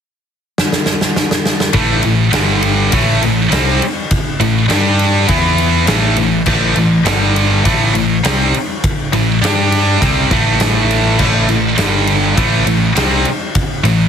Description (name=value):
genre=hard rock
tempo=102 BPM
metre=4/4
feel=straight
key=unclear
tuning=A4 = 444 Hz
part: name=huge arena drum kit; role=drums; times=0.6-14.0 s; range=crash cymbal, kick drum, ride cymbal, snare drum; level=-17 LUFS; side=equal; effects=none
part: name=heavy high-gain guitar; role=riff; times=1.7-14.1 s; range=G2 to G4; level=-17 LUFS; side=left 10 dB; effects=distortion
part: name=scooped high-gain guitar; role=riff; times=1.7-14.1 s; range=G2 to G4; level=-15 LUFS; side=right 9 dB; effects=distortion
part: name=picked electric bass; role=bass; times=1.7-14.1 s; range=G1 to G2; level=-17 LUFS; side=equal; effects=none
room=light reverb, small room ambience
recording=heavily compressed radio sound, multiband compression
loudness=-11 LUFS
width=side -8 dB against mid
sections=0.0-1.7 A section; 1.7-14.1 B section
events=drum fill 0.6-1.7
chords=0.0 N.C.; 1.7 A5; 2.3 G5; 2.9 A5; 4.7 G5; 5.3 E5; 5.9 A5; 7.1 G5; 7.7 A5; 9.4 G5; 10.0 A5; 11.8 G5; 12.4 A5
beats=0.56 1.15 | 1.74 2.33 2.92 3.52 | 4.11 4.70 5.29 5.88 | 6.47 7.06 7.65 8.24 | 8.83 9.42 10.01 10.60 | 11.19 11.78 12.37 12.96 | 13.55